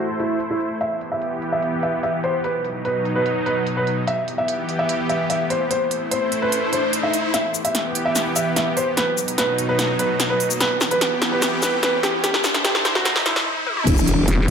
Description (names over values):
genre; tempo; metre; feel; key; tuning
heavy wobble dubstep; 147 BPM; 4/4; half-time; E harmonic minor; A4 = 440 Hz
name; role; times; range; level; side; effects
felt-muted upright piano; melody; 0.0-13.4 s; E4 to E5; -22 LUFS; right 1 dB; low-pass filter, tape echo
supersaw pad; sustained chords; 0.0-14.5 s; B2 to C5; -24 LUFS; equal; sidechain pumping
big-room dance drum kit; drums; 0.2-14.5 s; crash cymbal, hi-hat, shaker, snare drum, toms; -22 LUFS; equal; overdrive, high-pass filter on hats, high-pass filter on snare, high-pass filter on perc, high-pass filter on toms, high-pass filter on cymbals, high-pass filter on room
riser and impact; sound effects; 5.3-14.5 s; none; -28 LUFS; left 1 dB; none
growl bass; bass; 13.9-14.3 s; E1; -18 LUFS; left 1 dB; chorus, overdrive
electronic kick drum; drums; 13.9-14.5 s; none; -19 LUFS; equal; none
vowel-sweep wobble bass; bass; 14.3-14.5 s; E1; -17 LUFS; equal; chorus, overdrive
room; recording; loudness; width
moderate plate reverb, RT60 1.1 s; high-pass filter, low-pass filter; -18 LUFS; side -7 dB against mid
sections
0.0-7.3 A section; 7.3-13.9 B section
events
filter sweep 0.0-7.3; riser 5.3-7.3, 7.3-13.9; build-up 7.3-13.9; drum fill 7.3-13.5, 13.7; stop 13.5-13.9; impact 13.9-14.5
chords
0.0 Am; 0.8 Em; 2.4 B; 4.1 Em; 5.7 Am; 7.3 Em; 9.0 B; 10.6 Em; 12.2 Am; 13.9 Em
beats
0.40 | 0.81 1.22 1.62 2.03 | 2.44 2.85 3.26 3.67 | 4.07 4.48 4.89 5.30 | 5.71 6.12 6.52 6.93 | 7.34 7.75 8.16 8.56 | 8.97 9.38 9.79 10.20 | 10.61 11.01 11.42 11.83 | 12.24 12.65 13.05 13.46 | 13.87 14.28